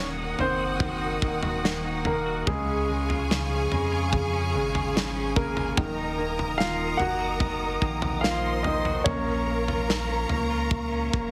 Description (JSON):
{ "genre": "pop ballad", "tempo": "72 BPM", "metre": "4/4", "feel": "straight", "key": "unclear", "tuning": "A4 = 440 Hz", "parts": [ { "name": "warm grand piano", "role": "melody", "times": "0.0-9.8 s", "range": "Ab3 to Gb5", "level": "-33 LUFS", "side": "equal", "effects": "none" }, { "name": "clear studio violin section", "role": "second line", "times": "0.0-11.3 s", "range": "Gb4 to C6", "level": "-35 LUFS", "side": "equal", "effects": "tape echo" }, { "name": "clear grand piano", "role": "accompaniment", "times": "0.0-11.3 s", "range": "Db3 to Bb3", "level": "-35 LUFS", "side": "equal", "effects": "none" }, { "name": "dark studio string section", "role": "sustained chords", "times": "0.0-11.3 s", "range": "Ab4 to Eb6", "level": "-36 LUFS", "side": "equal", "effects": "none" }, { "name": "clean electric guitar", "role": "arpeggios", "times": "0.0-11.3 s", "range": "Bb2 to Gb4", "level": "-38 LUFS", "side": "equal", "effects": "none" }, { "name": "sub bass with octave", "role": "bass", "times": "0.0-11.3 s", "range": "Eb1 to F2", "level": "-34 LUFS", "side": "equal", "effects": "none" }, { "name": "modern studio drum kit", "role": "drums", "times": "0.4-11.3 s", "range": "kick drum, snare drum, toms", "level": "-32 LUFS", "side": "equal", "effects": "none" } ], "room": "light reverb, small room ambience", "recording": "heavily compressed radio sound, multiband compression", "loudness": "-26 LUFS", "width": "mono", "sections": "0.0-11.3 A section", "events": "none", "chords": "0.0 Ebm; 2.5 Db; 5.8 Ebm; 9.1 Bbm" }